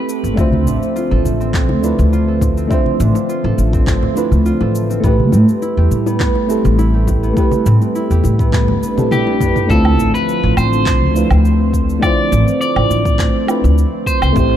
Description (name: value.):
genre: sunset chillout.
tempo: 103 BPM.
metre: 4/4.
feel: straight.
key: D dorian.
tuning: A4 = 438 Hz.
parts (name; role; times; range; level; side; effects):
electric guitar at the edge of break-up; melody; 0.0, 9.1-14.6 s; G4 to D5; -20 LUFS; equal; tape echo.
mellow FM electric piano; accompaniment; 0.0-14.6 s; A3 to E5; -19 LUFS; right 1 dB; chorus, auto-pan, cassette tape, tape echo.
airy breathy pad; sustained chords; 0.0-14.6 s; D3 to G4; -22 LUFS; left 1 dB; chorus.
deep house drum kit; drums; 0.1-14.5 s; cabasa, handclaps, toms, woodblock; -24 LUFS; right 1 dB; none.
upright bass; bass; 0.2-14.6 s; G1 to A2; -14 LUFS; equal; none.
concert harp; arpeggios; 0.4-12.5 s; B3 to A4; -24 LUFS; right 3 dB; tape echo.
electronic kick drum; drums; 0.4-14.5 s; none; -17 LUFS; equal; none.
congas and bongos; percussion; 0.5-9.4 s; none; -24 LUFS; left 4 dB; none.
swell; sound effects; 8.8-9.7 s; none; -27 LUFS; left 3 dB; none.
room: light reverb.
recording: dark, warm production.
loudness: -12 LUFS.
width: side -10 dB against mid.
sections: 0.0-9.7 A section; 9.7-14.6 B section.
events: drum fill 8.5-9.7; swell 8.8-9.7.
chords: 0.4 Dm7; 5.0 Am9.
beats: | 0.38 0.96 1.54 2.12 | 2.71 3.29 3.87 4.46 | 5.04 5.62 6.20 6.79 | 7.37 7.95 8.53 9.12 | 9.70 10.28 10.86 11.45 | 12.03 12.61 13.19 13.78 | 14.36.